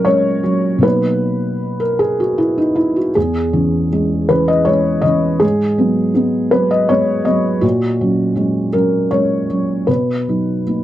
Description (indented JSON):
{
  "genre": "neoclassical minimalist piano",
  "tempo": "79 BPM",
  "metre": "3/4",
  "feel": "rubato",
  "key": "B major",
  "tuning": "A4 = 440 Hz",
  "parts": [
    { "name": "felt-muted upright piano", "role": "solo", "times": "0.0-10.8 s", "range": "E2 to D#5", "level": "-13 LUFS", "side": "equal", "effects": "none" }
  ],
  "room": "light reverb",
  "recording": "dry, close 1970s-style studio recording",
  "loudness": "-13 LUFS",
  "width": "side -13 dB against mid",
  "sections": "0.0-10.8 A section",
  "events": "none",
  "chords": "0.0 F#add9/A#; 0.8 Bmaj7; 3.2 E6; 5.4 G#m7; 7.6 F#add9/A#; 9.9 Bmaj7"
}